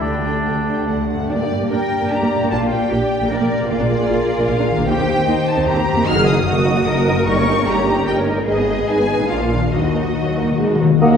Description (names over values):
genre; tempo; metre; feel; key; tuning
classical, dramatic, fast romantic movement for symphony orchestra; 137-154 BPM; 3/4; rubato; G minor, Eb minor from 6.1 s; A4 = 440 Hz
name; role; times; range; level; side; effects
rich symphonic violin section; melody; 0.0-11.2 s; D5 to F6; -24 LUFS; left 2 dB; none
dark studio violin section; second line; 0.0-11.2 s; D4 to Gb5; -23 LUFS; left 1 dB; none
warm oboe; second line; 0.0-1.1, 11.0-11.1 s; D4 to Eb5; -25 LUFS; right 1 dB; none
warm symphonic viola section; accompaniment; 0.0-11.2 s; F3 to Gb4; -21 LUFS; right 1 dB; none
concert harp; arpeggios; 0.0-11.2 s; Gb2 to A5; -24 LUFS; left 4 dB; none
bright symphonic double bass section; bass; 0.0-11.2 s; Gb1 to G2; -23 LUFS; right 2 dB; none
rich symphonic cello section; bass; 0.0-11.2 s; Eb2 to Bb4; -23 LUFS; right 1 dB; none
timpani; percussion; 3.7-4.3, 9.7-11.0 s; Bb2 to Eb3; -22 LUFS; left 5 dB; none
concert flute; second line; 11.0-11.1 s; Gb5; -20 LUFS; right 1 dB; none
mellow clarinet; second line; 11.0-11.2 s; Bb3; -18 LUFS; left 1 dB; none
warm bassoon; accompaniment; 11.0-11.1 s; Bb3; -18 LUFS; equal; none
warm tuba; bass; 11.0-11.2 s; Eb2; -18 LUFS; right 2 dB; none
room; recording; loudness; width
wet scoring stage reverb, RT60 1.7 s; heard from further back in the room; -15 LUFS; side -7 dB against mid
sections
0.0-1.3 A section; 1.3-11.0 B section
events
timpani fill 9.7-11.0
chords
0.0 Dsus4; 0.9 D; 1.3 Gm; 2.5 Gm/Bb; 3.7 Bb7; 4.9 Eb6; 6.1 Ebm/Gb; 7.3 Eb7/G; 8.5 Abm; 9.3 Bb; 9.7 Ebm